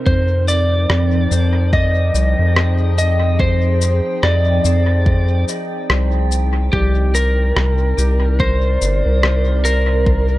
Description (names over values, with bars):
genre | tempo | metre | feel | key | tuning
ambient dub | 72 BPM | 4/4 | swing 58% on 16ths | unclear | A4 = 440 Hz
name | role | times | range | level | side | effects
warbly tape-like pad | sustained chords | 0.0-10.4 s | C3 to G5 | -24 LUFS | equal | chorus, built-in reverb, phaser
electric slide guitar | melody | 0.1-10.4 s | G4 to Eb5 | -20 LUFS | equal | dub echo
round analog bass | bass | 0.1-10.4 s | G1 to F2 | -15 LUFS | equal | none
electronic kick drum | drums | 0.1-10.3 s | none | -18 LUFS | equal | none
electronic cabasa and rim click | drums | 0.5-9.8 s | none | -21 LUFS | left 1 dB | dub echo
room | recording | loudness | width
light reverb | none | -13 LUFS | side -16 dB against mid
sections
0.0-10.4 A section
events
none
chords
0.1 Fm9; 6.7 Cm9